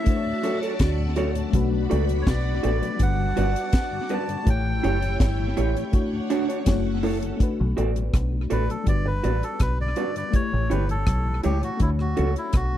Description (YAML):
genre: lovers rock reggae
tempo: 82 BPM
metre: 4/4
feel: straight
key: B minor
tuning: A4 = 442 Hz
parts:
  - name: melodica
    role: melody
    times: 0.0-12.8 s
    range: E4 to A5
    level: -31 LUFS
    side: equal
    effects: tape echo
  - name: string machine, full ensemble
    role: second line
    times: 0.0-7.4 s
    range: C#4 to B5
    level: -32 LUFS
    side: right 1 dB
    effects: phaser, ensemble chorus
  - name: mellow FM electric piano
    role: accompaniment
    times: 0.0-12.8 s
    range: G3 to C#5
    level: -30 LUFS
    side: left 5 dB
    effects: chorus
  - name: deep reggae drum kit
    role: drums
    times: 0.1-12.7 s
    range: hi-hat, kick drum, rim click, snare drum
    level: -23 LUFS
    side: equal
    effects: none
  - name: mellow tonewheel organ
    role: accompaniment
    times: 0.3-12.8 s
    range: D2 to G4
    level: -35 LUFS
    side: left 6 dB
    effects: chorus vibrato, slow rotary speaker, tape echo
  - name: electric guitar through a small old amp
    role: stabs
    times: 0.4-12.3 s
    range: D4 to D5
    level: -29 LUFS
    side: right 5 dB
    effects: spring reverb
  - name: deep dub fingered electric bass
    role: bass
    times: 0.8-12.8 s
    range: F#1 to D2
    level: -24 LUFS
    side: equal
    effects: none
room: small room ambience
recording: dry, close 1970s-style studio recording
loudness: -21 LUFS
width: side -12 dB against mid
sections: 0.0-7.4 A section; 7.4-12.8 B section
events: melodica solo 7.4-12.8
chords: 0.1 Dmaj7; 1.5 Bm7; 3.0 Gmaj7; 4.5 A7; 5.9 Dmaj7; 6.7 F#m7; 7.4 Bm7; 8.9 Gmaj7; 10.3 A7; 11.8 Dmaj7